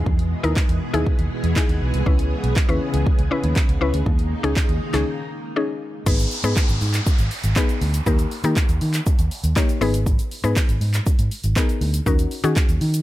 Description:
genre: dance-pop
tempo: 120 BPM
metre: 4/4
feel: straight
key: G# minor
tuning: A4 = 441 Hz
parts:
  - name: mallet-like synth pluck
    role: accompaniment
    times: 0.0-13.0 s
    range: A#3 to C#5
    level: -25 LUFS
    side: left 4 dB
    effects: chorus, sidechain pumping
  - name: string machine, full ensemble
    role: sustained chords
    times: 0.0-6.0 s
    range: B2 to G#4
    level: -28 LUFS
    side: equal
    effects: ensemble chorus, sidechain pumping
  - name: vintage muted fingered electric bass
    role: bass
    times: 0.0-13.0 s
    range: G#1 to D#3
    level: -21 LUFS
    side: equal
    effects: sidechain pumping
  - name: house drum kit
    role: drums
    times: 0.1-13.0 s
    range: crash cymbal, handclaps, hi-hat, kick drum, shaker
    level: -20 LUFS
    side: equal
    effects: none
  - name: swell and downlifter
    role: sound effects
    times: 4.0-10.1 s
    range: none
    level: -32 LUFS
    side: right 1 dB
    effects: none
  - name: tube shaker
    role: percussion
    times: 6.1-13.0 s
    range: none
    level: -42 LUFS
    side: right 9 dB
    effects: none
room: little or no reverb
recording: none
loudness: -18 LUFS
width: side -15 dB against mid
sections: 0.0-6.1 A section; 6.1-13.0 B section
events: break 5.1-6.1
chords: 0.0 Emaj7; 2.1 C#m7; 4.1 D#7sus4; 6.1 G#m; 8.1 D#; 9.8 G#m; 12.1 D#m7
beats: | 0.06 0.56 1.06 1.56 | 2.06 2.56 3.06 3.56 | 4.06 4.56 5.06 5.56 | 6.06 6.56 7.06 7.56 | 8.06 8.56 9.06 9.56 | 10.06 10.56 11.06 11.56 | 12.06 12.56

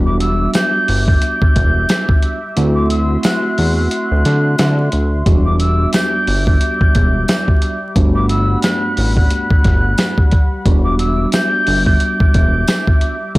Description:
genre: hip hop, boom-bap hip-hop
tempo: 89 BPM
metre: 4/4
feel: swing 58% on 16ths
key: E minor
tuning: A4 = 436 Hz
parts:
  - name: mellow tine electric piano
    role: accompaniment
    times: 0.0-13.4 s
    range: E2 to F#4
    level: -21 LUFS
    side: equal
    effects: medium stereo tremolo, cassette tape, high-pass filter, low-pass filter
  - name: dark analog pad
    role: sustained chords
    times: 0.0-13.4 s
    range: G3 to D6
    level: -26 LUFS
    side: equal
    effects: chorus, high-pass filter, low-pass filter
  - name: fat analog bass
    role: bass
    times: 0.0-13.4 s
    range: E1 to D3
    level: -16 LUFS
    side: equal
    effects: none
  - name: breathy jazz flute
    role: melody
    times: 0.1-13.3 s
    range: D6 to G6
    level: -20 LUFS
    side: equal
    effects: high-pass filter, low-pass filter
  - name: dusty soul sampler-style drum kit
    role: drums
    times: 0.2-13.4 s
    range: hi-hat, kick drum, snare drum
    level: -14 LUFS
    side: equal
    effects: none
  - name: tambourine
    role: percussion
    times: 0.5-12.9 s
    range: none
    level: -30 LUFS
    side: right 2 dB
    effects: none
room: digital ambience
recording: dry, gritty hardware recording, vinyl crackle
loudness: -12 LUFS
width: side -20 dB against mid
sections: 0.0-13.4 A section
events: kick muted 2.6-5.3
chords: 0.0 Em7; 2.6 D9; 5.3 Em7; 8.0 Gmaj7; 10.7 Em7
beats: 0.54 1.22 1.89 | 2.57 3.24 3.92 4.59 | 5.26 5.94 6.61 7.29 | 7.96 8.63 9.31 9.98 | 10.66 11.33 12.01 12.68 | 13.35

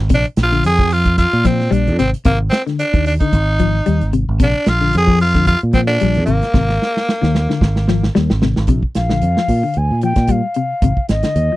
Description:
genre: afrobeat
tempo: 112 BPM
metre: 4/4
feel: swing 55% on 16ths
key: Bb mixolydian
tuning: A4 = 440 Hz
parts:
  - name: fingered electric bass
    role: bass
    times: 0.0-11.5 s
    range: Ab1 to Bb2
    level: -16 LUFS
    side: right 1 dB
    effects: none
  - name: breathy tenor saxophone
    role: melody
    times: 0.1-8.1 s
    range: Bb3 to Ab4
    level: -18 LUFS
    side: equal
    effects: none
  - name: semi-hollow electric guitar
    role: arpeggios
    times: 0.1-11.6 s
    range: C3 to G3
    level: -20 LUFS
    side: left 6 dB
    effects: tremolo
  - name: warm soul drum kit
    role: drums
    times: 0.1-11.5 s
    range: hi-hat, kick drum, snare drum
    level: -18 LUFS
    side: right 1 dB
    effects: none
  - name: mellow hollow jazz flute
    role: melody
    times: 9.0-11.6 s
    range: Eb5 to Ab5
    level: -20 LUFS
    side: left 2 dB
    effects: none
room: little or no reverb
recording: dry, close 1970s-style studio recording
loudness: -13 LUFS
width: side -17 dB against mid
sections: 0.0-8.7 A section; 8.7-11.6 B section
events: drum fill 6.5-8.7; flute solo 8.7-11.6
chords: 0.1 Bbsus2; 2.3 Ab; 4.4 Bbadd9; 6.5 Abadd9; 8.7 Bbadd9; 10.8 Ab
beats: | 0.11 0.65 1.18 1.72 | 2.25 2.79 3.33 3.86 | 4.40 4.93 5.47 6.01 | 6.54 7.08 7.61 8.15 | 8.69 9.22 9.76 10.29 | 10.83 11.37

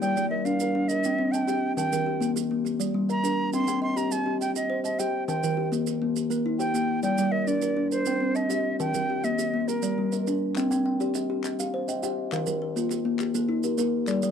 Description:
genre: southern african traditional, mbira-style interlocking cycle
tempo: 136 BPM (dotted quarters)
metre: 12/8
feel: straight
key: C equiheptatonic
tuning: A4 = 439 Hz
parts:
  - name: silver concert flute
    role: melody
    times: 0.0-10.3 s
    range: Bb4+26c to C6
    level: -29 LUFS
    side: right 3 dB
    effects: none
  - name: kalimba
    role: arpeggios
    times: 0.0-14.3 s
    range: Eb3+43c to G5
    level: -26 LUFS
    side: left 3 dB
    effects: none
  - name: kalimba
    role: arpeggios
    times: 0.0-14.3 s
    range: Eb3+43c to A5-43c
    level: -32 LUFS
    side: right 8 dB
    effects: none
  - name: maracas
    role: percussion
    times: 0.0-14.3 s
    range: none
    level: -38 LUFS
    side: right 13 dB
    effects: none
  - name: group handclap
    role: percussion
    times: 10.6-14.2 s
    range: none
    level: -39 LUFS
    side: left 8 dB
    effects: none
room: small room ambience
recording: dry, close 1970s-style studio recording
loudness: -24 LUFS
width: side -8 dB against mid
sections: 0.0-10.6 A section; 10.6-14.3 B section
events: none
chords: 0.0 Gm; 0.9 Cm; 1.8 Eb; 2.6 Gm; 3.5 Cm; 5.3 Eb; 7.0 Gm; 7.9 Cm; 8.8 Eb; 9.7 Gm; 10.6 Cm; 12.3 Eb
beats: | 0.02 0.46 0.90 1.33 | 1.77 2.21 2.65 3.09 | 3.52 3.96 4.40 4.84 | 5.28 5.72 6.16 6.60 | 7.04 7.48 7.92 8.36 | 8.80 9.24 9.68 10.12 | 10.56 11.00 11.44 11.88 | 12.32 12.76 13.20 13.64 | 14.08

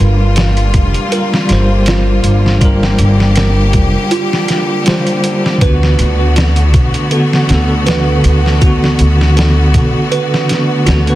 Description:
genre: trip hop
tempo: 80 BPM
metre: 4/4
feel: swing 54% on 16ths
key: unclear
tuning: A4 = 440 Hz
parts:
  - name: bell-like tine electric piano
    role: accompaniment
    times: 0.0-11.2 s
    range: D3 to C5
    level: -15 LUFS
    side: equal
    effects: tremolo, tape echo
  - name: bright studio string section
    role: sustained chords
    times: 0.0-11.2 s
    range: D3 to G4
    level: -18 LUFS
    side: left 2 dB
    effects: none
  - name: upright bass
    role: bass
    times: 0.0-11.2 s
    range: F1 to D2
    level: -12 LUFS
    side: equal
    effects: tube saturation
  - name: music box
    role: arpeggios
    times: 0.4-11.2 s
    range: F4 to B4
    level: -21 LUFS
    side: right 5 dB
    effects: vintage 12-bit sampler grit, tape echo
  - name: trip hop sampler-style drum kit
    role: drums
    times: 0.4-11.2 s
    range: hi-hat, kick drum, snare drum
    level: -15 LUFS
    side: equal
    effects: none
room: light reverb, small room ambience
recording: dense, heavily limited modern master, vinyl crackle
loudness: -9 LUFS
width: side -15 dB against mid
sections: 0.0-11.2 A section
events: none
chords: 0.0 Gm7; 5.6 D6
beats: 0.37 1.12 1.87 | 2.62 3.37 4.12 4.87 | 5.62 6.37 7.12 7.87 | 8.62 9.37 10.12 10.87

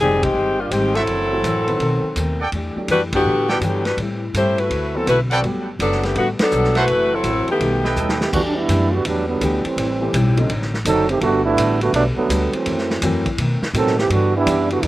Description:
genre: jazz, big band swing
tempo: 166 BPM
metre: 4/4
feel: swing 65% on 8ths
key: G major, E minor from 8.3 s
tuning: A4 = 441 Hz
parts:
  - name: mellow saxophone section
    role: melody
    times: 0.0-8.2 s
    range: D3 to D5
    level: -18 LUFS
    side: left 1 dB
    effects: none
  - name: picked steel-string acoustic guitar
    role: accompaniment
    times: 0.0-14.9 s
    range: F#2 to B4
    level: -26 LUFS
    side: left 2 dB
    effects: none
  - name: upright bass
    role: bass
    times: 0.0-14.9 s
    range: F1 to B2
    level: -23 LUFS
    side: equal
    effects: none
  - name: vintage drum kit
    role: drums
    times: 0.2-14.9 s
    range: crash cymbal, hi-hat, kick drum, ride cymbal, snare drum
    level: -27 LUFS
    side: equal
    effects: none
  - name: clear trumpet section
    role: stabs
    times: 0.9-8.3 s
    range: F#4 to G5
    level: -22 LUFS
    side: right 2 dB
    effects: slapback echo
  - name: clear upright piano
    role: accompaniment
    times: 1.3-14.0 s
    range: D3 to B4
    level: -27 LUFS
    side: equal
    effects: none
  - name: clear trombone section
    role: second line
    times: 8.0-14.9 s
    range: D3 to A4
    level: -18 LUFS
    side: right 3 dB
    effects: slapback echo
room: little or no reverb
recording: recorded outdoors, with no room sound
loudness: -16 LUFS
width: side -16 dB against mid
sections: 0.0-8.3 A section; 8.3-14.9 B section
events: band accent 0.2, 3.1, 6.3; drum fill 8.0-8.3; trombone section solo 8.3-14.9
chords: 0.0 Abmaj7; 1.1 F#m7b5; 1.8 B7b9; 2.5 Em11; 4.0 Am7; 4.7 D13; 5.4 Gmaj9; 6.9 F#m7b5; 7.6 B7b13; 8.3 Em11; 9.8 Am7; 10.5 D7b9; 11.2 Gmaj9; 12.7 F#m7b5; 13.4 B7b9; 14.1 Em7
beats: 0.35 0.71 | 1.08 1.44 1.80 2.16 | 2.53 2.89 3.25 3.62 | 3.98 4.34 4.70 5.07 | 5.43 5.79 6.16 6.52 | 6.88 7.24 7.61 7.97 | 8.33 8.69 9.05 9.41 | 9.77 10.13 10.50 10.86 | 11.22 11.58 11.94 12.30 | 12.66 13.02 13.38 13.74 | 14.11 14.46 14.83

